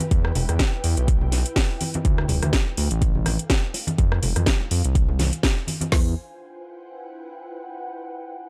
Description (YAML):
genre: deep house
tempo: 124 BPM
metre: 4/4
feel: swing 56% on 16ths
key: E phrygian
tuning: A4 = 440 Hz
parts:
  - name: house drum kit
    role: drums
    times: 0.0-5.9 s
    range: hi-hat, rim click, snare drum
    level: -28 LUFS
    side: equal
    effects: none
  - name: congas and bongos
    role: percussion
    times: 0.0-5.9 s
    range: none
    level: -31 LUFS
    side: equal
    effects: none
  - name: ethereal airy pad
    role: texture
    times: 0.0-7.8 s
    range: D4 to Ab5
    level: -40 LUFS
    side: equal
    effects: ensemble chorus, built-in reverb, sidechain pumping
  - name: smooth synth bass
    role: bass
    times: 0.1-6.1 s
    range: D1 to F2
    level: -25 LUFS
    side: equal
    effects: tube saturation, sidechain pumping
  - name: deep house drum kit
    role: drums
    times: 0.1-6.0 s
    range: hi-hat, kick drum, snare drum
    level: -23 LUFS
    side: equal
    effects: none
room: little or no reverb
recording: dry, gritty hardware recording, transformer saturation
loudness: -22 LUFS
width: mono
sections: 0.0-5.9 A section; 5.9-7.9 B section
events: fade-out on ambient pad 0.0-5.9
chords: 0.0 Em; 2.0 Dm; 4.0 Fm; 5.9 Emadd9